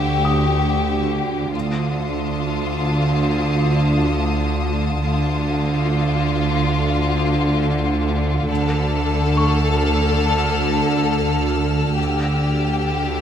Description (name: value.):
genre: cinematic, suspense film score.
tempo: free time.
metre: none.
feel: none.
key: D phrygian.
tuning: A4 = 440 Hz.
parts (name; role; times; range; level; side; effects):
clear studio violin section; melody; 0.0-13.2 s; F4 to A4; -24 LUFS; left 5 dB; none.
clear studio cello section; bass; 0.0-13.2 s; D3; -24 LUFS; right 2 dB; none.
rich studio double bass section; bass; 0.0-13.2 s; D2; -22 LUFS; right 2 dB; none.
organ-like drone; drone; 0.0-13.2 s; D2; -23 LUFS; right 1 dB; ensemble chorus, built-in reverb.
felt-muted upright piano; texture; 0.0-12.0 s; Bb5 to Eb6; -31 LUFS; left 2 dB; none.
rich studio violin section; texture; 0.0-13.2 s; A5 to F6; -31 LUFS; left 2 dB; none.
room: moderate recital hall reverb, RT60 1.4 s.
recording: none.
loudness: -17 LUFS.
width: side -9 dB against mid.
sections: 0.0-13.2 A section.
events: none.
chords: 0.0 Eb/D.